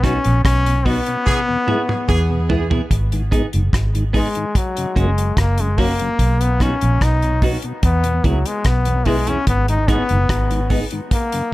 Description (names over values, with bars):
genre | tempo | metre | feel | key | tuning
roots reggae | 73 BPM | 4/4 | straight | unclear | A4 = 440 Hz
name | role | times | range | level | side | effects
brilliant trombone | melody | 0.0-11.5 s | F#3 to D#4 | -21 LUFS | left 2 dB | tape echo
clean electric guitar | accompaniment | 0.0-10.8 s | A#3 to G#4 | -27 LUFS | right 4 dB | tape echo
mellow tonewheel organ | accompaniment | 0.0-11.4 s | E2 to E4 | -27 LUFS | left 2 dB | chorus vibrato, slow rotary speaker
vintage muted fingered electric bass | bass | 0.0-10.8 s | F#1 to E2 | -18 LUFS | equal | none
damped 70s drum kit | drums | 0.0-11.5 s | hi-hat, kick drum, rim click, toms | -20 LUFS | equal | none
warm horn section | second line | 1.3-2.7 s | E3 to G#4 | -27 LUFS | right 2 dB | tape echo
room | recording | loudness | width
little or no reverb | none | -15 LUFS | side -17 dB against mid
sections
0.0-2.9 A section; 2.9-11.5 B section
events
band accent 0.0-2.9; drum fill 1.3-2.9; trombone solo 2.9-11.5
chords
0.0 B; 1.3 E; 2.9 G#m; 4.6 F#; 6.2 B; 7.8 E; 9.5 G#m